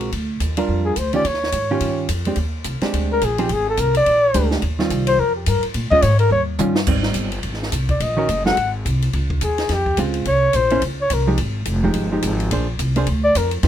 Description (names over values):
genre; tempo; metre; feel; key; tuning
jazz, small-group swing and bop; 213 BPM; 4/4; swing 59% on 8ths; Eb major, Ab major from 6.9 s; A4 = 440 Hz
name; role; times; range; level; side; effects
hollow-body jazz guitar; accompaniment; 0.0-13.7 s; Eb3 to C5; -22 LUFS; right 3 dB; none
upright bass; bass; 0.0-13.7 s; F1 to Bb2; -21 LUFS; equal; none
compact cocktail drum kit; drums; 0.0-13.7 s; crash cymbal, hi-hat, kick drum, ride cymbal, snare drum, toms; -26 LUFS; left 1 dB; none
mellow flugelhorn; melody; 0.8-13.5 s; G4 to Gb5; -18 LUFS; left 1 dB; none
room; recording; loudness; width
light reverb; minimal, uncompressed stereo recording; -17 LUFS; side -10 dB against mid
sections
0.0-6.9 A section; 6.9-13.7 A section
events
flugelhorn solo 0.0-13.7; drum fill 6.3-6.9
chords
0.1 Gm7; 1.2 Eb9; 2.4 Abmaj9#11; 3.5 Abadd9; 4.1 Bb6; 4.6 Eb69; 5.8 Bbm7; 6.3 Eb9; 6.9 Abmaj7; 8.0 Ebm7; 8.6 Ab; 9.1 Dbmaj7; 10.3 C7(no3); 11.4 Fm9; 12.5 Bb9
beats
| 0.12 0.40 0.69 0.97 | 1.25 1.53 1.81 2.09 | 2.37 2.65 2.94 3.22 | 3.50 3.78 4.06 4.34 | 4.62 4.91 5.19 5.47 | 5.75 6.03 6.31 6.60 | 6.88 7.16 7.44 7.72 | 8.01 8.29 8.57 8.85 | 9.13 9.41 9.70 9.98 | 10.26 10.54 10.82 11.10 | 11.38 11.66 11.95 12.23 | 12.51 12.79 13.07 13.35 | 13.63